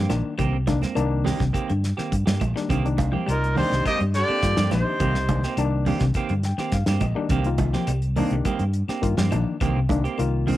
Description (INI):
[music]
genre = afrobeat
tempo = 104 BPM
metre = 4/4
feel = straight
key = C minor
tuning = A4 = 439 Hz
[part]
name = semi-hollow electric guitar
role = arpeggios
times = 0.0-10.6 s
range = C3 to G3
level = -31 LUFS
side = left 4 dB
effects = none
[part]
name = clean electric guitar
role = stabs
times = 0.0-10.6 s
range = Eb3 to G4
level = -30 LUFS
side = right 6 dB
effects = plate reverb
[part]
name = fingered electric bass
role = bass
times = 0.0-10.5 s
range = Bb1 to G2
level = -24 LUFS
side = equal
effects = none
[part]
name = barky reed electric piano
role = accompaniment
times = 0.1-10.6 s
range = Eb3 to G5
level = -28 LUFS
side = left 5 dB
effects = overdrive, plate reverb
[part]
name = damped 70s drum kit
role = drums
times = 0.1-10.6 s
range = hi-hat, kick drum, snare drum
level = -28 LUFS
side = equal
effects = none
[part]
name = claves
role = percussion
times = 0.1-10.3 s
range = none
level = -42 LUFS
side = left 6 dB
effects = none
[part]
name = congas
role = percussion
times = 0.1-10.6 s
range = none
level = -30 LUFS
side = right 5 dB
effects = none
[part]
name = clear trumpet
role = melody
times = 3.3-5.5 s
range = Bb4 to Eb5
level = -25 LUFS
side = equal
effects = cassette tape, plate reverb
[part]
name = bright baritone saxophone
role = second line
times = 3.3-5.5 s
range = Bb2 to Eb3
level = -33 LUFS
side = left 6 dB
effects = plate reverb
[part]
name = raspy alto saxophone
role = second line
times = 3.3-5.5 s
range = Eb4 to G4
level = -32 LUFS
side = right 5 dB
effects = plate reverb
[sound]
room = light reverb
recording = home recording on cassette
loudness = -20 LUFS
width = side -14 dB against mid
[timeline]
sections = 0.0-10.6 A section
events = reed electric piano fill 6.1-7.3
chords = 0.0 Cm7